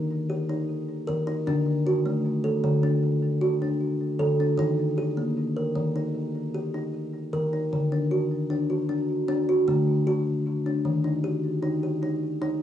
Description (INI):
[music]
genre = world meditative, meditative tuned percussion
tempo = 77 BPM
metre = 4/4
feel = straight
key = unclear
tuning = A4 = 440 Hz
[part]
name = kalimba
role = solo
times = 0.0-12.6 s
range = D3 to Bb4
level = -23 LUFS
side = equal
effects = cassette tape, tape echo
[sound]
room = wet small room reverb, RT60 0.5 s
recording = home recording on cassette, small room ambience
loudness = -23 LUFS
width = side -10 dB against mid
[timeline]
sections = 0.0-7.7 A section; 7.7-12.6 B section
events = none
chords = 0.0 Eb; 1.5 D; 4.6 Eb; 7.7 D; 10.8 Eb